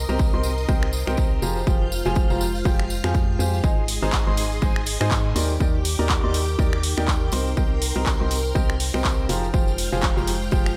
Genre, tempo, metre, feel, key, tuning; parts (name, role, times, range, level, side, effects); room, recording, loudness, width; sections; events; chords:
piano house; 122 BPM; 4/4; swing 58% on 16ths; C minor; A4 = 440 Hz
string machine, violins; sustained chords; 0.0-10.8 s; F4 to G6; -36 LUFS; equal; ensemble chorus, sidechain pumping
organ-like FM bass; bass; 0.0-10.8 s; F1 to Ab2; -28 LUFS; equal; sidechain pumping
warbly tape-like pad; texture; 0.0-10.8 s; Ab3 to D6; -36 LUFS; equal; chorus, built-in reverb, sidechain pumping
clear upright piano; riff; 0.1-10.7 s; Eb3 to C6; -30 LUFS; equal; sidechain pumping, delay
tambourine; percussion; 0.1-10.7 s; -38 LUFS; equal
electronic kick drum; drums; 0.2-10.6 s; -24 LUFS; equal; overdrive
punchy analog drum machine; drums; 0.8-10.7 s; finger snaps, handclaps, hi-hat; -30 LUFS; equal
little or no reverb; -22 LUFS; mono
0.0-10.8 A section
0.0 Cm7; 1.4 Fmadd9; 3.6 Ab; 5.4 Ebmaj7; 7.3 Cm7; 9.3 Fmadd9